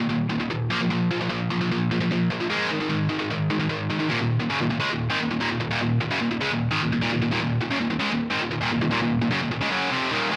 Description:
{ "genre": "metal", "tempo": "150 BPM", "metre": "4/4", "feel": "straight", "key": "Eb minor", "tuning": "A4 = 440 Hz", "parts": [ { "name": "tight distorted guitar", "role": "solo", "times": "0.0-10.4 s", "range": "Eb2 to Bb3", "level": "-24 LUFS", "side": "equal", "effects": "distortion, delay" } ], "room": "light reverb", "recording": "none", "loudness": "-24 LUFS", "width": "mono", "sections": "0.0-4.1 A section; 4.1-10.4 B section", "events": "none", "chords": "0.0 Eb5; 0.7 Bb5; 2.5 Ab5; 4.1 Ebm" }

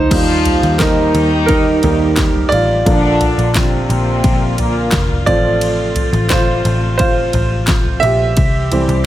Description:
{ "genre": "piano-driven pop", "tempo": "87 BPM", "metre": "4/4", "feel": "straight", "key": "unclear", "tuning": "A4 = 441 Hz", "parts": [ { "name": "clear grand piano", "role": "accompaniment", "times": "0.0-9.1 s", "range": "E3 to E5", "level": "-16 LUFS", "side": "right 2 dB", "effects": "none" }, { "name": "warm studio string section", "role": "sustained chords", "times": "0.0-9.1 s", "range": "C3 to G4", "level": "-24 LUFS", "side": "left 3 dB", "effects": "stereo widening" }, { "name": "vintage muted picked electric bass", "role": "bass", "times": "0.0-9.1 s", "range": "F1 to Eb2", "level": "-18 LUFS", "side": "equal", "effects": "none" }, { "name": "mellow French horn section", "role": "second line", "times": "0.1-5.2 s", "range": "Bb2 to F4", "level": "-19 LUFS", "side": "left 1 dB", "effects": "tape echo" }, { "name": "pop drum kit", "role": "drums", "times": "0.1-9.1 s", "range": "crash cymbal, handclaps, kick drum, ride cymbal, snare drum, toms", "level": "-18 LUFS", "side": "equal", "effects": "none" } ], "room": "light reverb", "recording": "none", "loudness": "-11 LUFS", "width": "side -13 dB against mid", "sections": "0.1-9.1 A section", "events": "grand piano solo 0.1-9.1", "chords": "0.1 Eb; 2.9 Bb; 5.3 F/A; 8.4 C" }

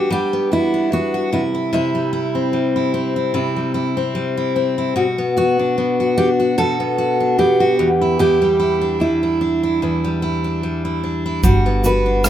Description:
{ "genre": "acoustic pop", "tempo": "74 BPM", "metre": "4/4", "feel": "swing 55% on 16ths", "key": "unclear", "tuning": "A4 = 440 Hz", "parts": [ { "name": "fingerpicked steel-string acoustic guitar", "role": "melody", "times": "0.0-12.3 s", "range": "E4 to B4", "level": "-19 LUFS", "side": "right 2 dB", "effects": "none" }, { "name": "picked steel-string acoustic guitar", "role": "accompaniment", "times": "0.0-12.3 s", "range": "E2 to F#4", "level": "-18 LUFS", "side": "left 2 dB", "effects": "none" }, { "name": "upright bass", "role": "bass", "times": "11.4-12.3 s", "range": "G1", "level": "-17 LUFS", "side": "right 1 dB", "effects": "none" }, { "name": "natural country drum kit", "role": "drums", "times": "11.4-12.3 s", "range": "kick drum, rim click, shaker", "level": "-18 LUFS", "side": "right 2 dB", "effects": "none" } ], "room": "little or no reverb", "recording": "minimal, uncompressed stereo recording", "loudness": "-16 LUFS", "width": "side -10 dB against mid", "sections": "0.0-12.3 A section", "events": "none", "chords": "0.0 Gmaj7; 1.3 C; 5.0 Bm7; 7.8 Em7; 11.4 Gmaj7" }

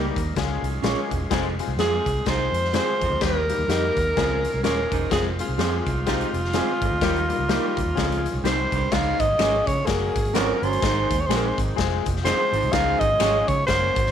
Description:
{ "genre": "uptempo 1960s-style soul", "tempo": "126 BPM", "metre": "4/4", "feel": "swing 59% on 8ths", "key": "unclear", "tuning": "A4 = 440 Hz", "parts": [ { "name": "clear alto saxophone", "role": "melody", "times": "0.0-14.1 s", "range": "F4 to F5", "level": "-24 LUFS", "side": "equal", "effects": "none" }, { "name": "clear baby grand piano", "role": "accompaniment", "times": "0.0-14.0 s", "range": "G3 to Bb4", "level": "-30 LUFS", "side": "left 11 dB", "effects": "none" }, { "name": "overdriven tonewheel organ", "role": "sustained chords", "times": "0.0-14.1 s", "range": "Eb3 to F4", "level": "-36 LUFS", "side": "right 1 dB", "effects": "slow rotary speaker" }, { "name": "electric guitar at the edge of break-up", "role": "stabs", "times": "0.0-13.4 s", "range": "Bb3 to Eb5", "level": "-31 LUFS", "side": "right 12 dB", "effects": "spring reverb, slapback echo" }, { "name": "vintage muted fingered electric bass", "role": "bass", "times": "0.0-14.1 s", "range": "Eb1 to Db3", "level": "-27 LUFS", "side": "right 1 dB", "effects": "none" }, { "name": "raw garage drum kit", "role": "drums", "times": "0.2-14.1 s", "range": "crash cymbal, hi-hat, kick drum, snare drum", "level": "-27 LUFS", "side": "left 3 dB", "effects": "none" }, { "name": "raspy baritone saxophone", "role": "riff", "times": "1.3-13.1 s", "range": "Eb2 to Ab2", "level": "-31 LUFS", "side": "right 12 dB", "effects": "none" }, { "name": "finger snaps", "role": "percussion", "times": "9.4-13.3 s", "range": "none", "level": "-35 LUFS", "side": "left 12 dB", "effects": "none" } ], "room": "light reverb, small room ambience", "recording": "1960s-style stereo with parts hard left and right", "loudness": "-20 LUFS", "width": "side -9 dB against mid", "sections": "0.0-8.9 A section; 8.9-14.1 B section", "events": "none", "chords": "0.4 Db; 1.3 Fm; 3.2 Eb; 4.2 Db; 5.1 Fm; 7.0 Eb; 8.0 Db; 8.4 Cm; 8.9 Db; 9.9 Gb; 10.8 Ab; 11.8 Fm; 12.7 Db" }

